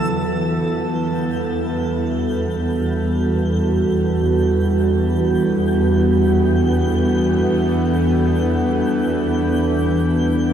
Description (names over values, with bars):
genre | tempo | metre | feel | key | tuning
ambient | free time | none | none | E minor | A4 = 440 Hz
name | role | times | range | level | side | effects
warbly tape-like pad | sustained chords | 0.0-10.5 s | D3 to A4 | -19 LUFS | right 1 dB | chorus, built-in reverb
dark studio double bass section | bass | 0.0-10.5 s | E2 | -22 LUFS | equal | none
bowed-like drone | drone | 0.0-10.5 s | E3 to B3 | -22 LUFS | equal | built-in reverb
twinkling granular texture | texture | 0.0-10.5 s | E6 to G6 | -34 LUFS | left 2 dB | built-in reverb
room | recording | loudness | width
wet shimmer reverb, RT60 8.1 s | cassette tape | -16 LUFS | side -9 dB against mid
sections
0.1-10.5 A section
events
fade-in on synth texture 0.1-10.5; filter sweep on ambient pad 0.1-10.5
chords
0.1 Em11